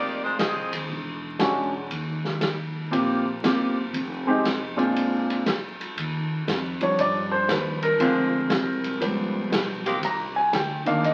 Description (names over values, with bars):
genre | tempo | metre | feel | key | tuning
jazz, big band swing | 118 BPM | 4/4 | swing 66% on 8ths | Eb major | A4 = 441 Hz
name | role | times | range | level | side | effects
bright saxophone section | melody | 0.0-0.9 s | Ab3 to Eb5 | -30 LUFS | equal | none
upright bass | bass | 0.0-11.1 s | E1 to G2 | -35 LUFS | equal | none
vintage drum kit | drums | 0.4-11.1 s | hi-hat, ride cymbal, snare drum | -31 LUFS | equal | none
clear grand piano | accompaniment | 1.4-11.1 s | Bb2 to Bb5 | -26 LUFS | equal | none
clear saxophone section | sustained chords | 8.0-10.0 s | D3 to G4 | -32 LUFS | equal | none
room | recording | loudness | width
wet large studio reverb, RT60 1.4 s | very old 78 rpm record, vinyl crackle | -25 LUFS | mono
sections
0.0-6.0 A section; 6.0-11.1 B section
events
grand piano solo 6.0-11.1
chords
0.0 Fm7; 0.9 E13; 1.9 Eb6; 3.9 Fm7; 5.0 Bb7; 6.0 Ebmaj9; 8.0 Dm7b5; 9.0 Db7#11; 10.0 Cm7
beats
0.39 0.90 1.40 | 1.91 2.42 2.92 3.43 | 3.94 4.45 4.95 5.46 | 5.97 6.47 6.98 7.49 | 8.00 8.50 9.01 9.52 | 10.02 10.53 11.04